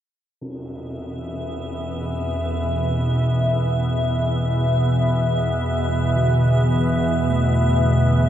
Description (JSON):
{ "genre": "dark ambient drone", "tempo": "free time", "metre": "none", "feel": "none", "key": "unclear", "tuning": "A4 = 440 Hz", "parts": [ { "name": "organ-like drone", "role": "drone", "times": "1.1-8.3 s", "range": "E2 to B2", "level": "-19 LUFS", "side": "equal", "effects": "ensemble chorus, built-in reverb" }, { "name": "tam-tam", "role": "percussion", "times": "0.4-0.6 s", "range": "none", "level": "-36 LUFS", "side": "equal", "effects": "low-pass filter on cymbals" }, { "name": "icy glass pad", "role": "texture", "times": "1.3-8.3 s", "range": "E5", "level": "-26 LUFS", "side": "left 1 dB", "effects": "chorus, built-in reverb" }, { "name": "bronze singing bowl", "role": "arpeggios", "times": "6.2-8.3 s", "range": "D3 to A3", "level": "-28 LUFS", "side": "left 2 dB", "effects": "tape echo" } ], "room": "moderate huge ambient reverb, RT60 9.1 s", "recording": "worn, warbling old tape, cassette tape, warbly pitch drift", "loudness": "-18 LUFS", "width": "side -10 dB against mid", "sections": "0.4-8.3 A section", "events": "fade-in on singing bowl 0.4-8.3; fade-in on drum 0.4-8.3", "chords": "0.4 E5" }